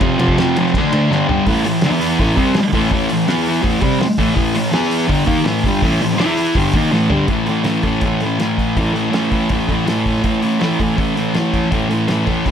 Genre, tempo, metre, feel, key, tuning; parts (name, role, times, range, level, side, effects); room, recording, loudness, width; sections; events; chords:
garage rock duo or trio; 164 BPM; 4/4; straight; A4 = 441 Hz
thick fuzz guitar; riff; 0.0-12.5 s; F2 to E4; -15 LUFS; equal; distortion
cloth-damped thuddy drum kit; drums; 0.0-12.5 s; hi-hat, kick drum, ride cymbal, snare drum, toms; -21 LUFS; equal
moderate club reverb, RT60 0.5 s; -14 LUFS; side -8 dB against mid
0.0-1.5 A section; 1.5-7.3 B section; 7.3-12.5 C section
drum fill 1.1-1.5, 6.9-7.3
0.0 F5; 0.7 D5; 1.1 G5; 1.5 A5; 1.8 E5; 2.2 A5; 3.3 E5; 3.6 A5; 4.7 E5; 5.1 A5; 6.2 E5; 6.6 A5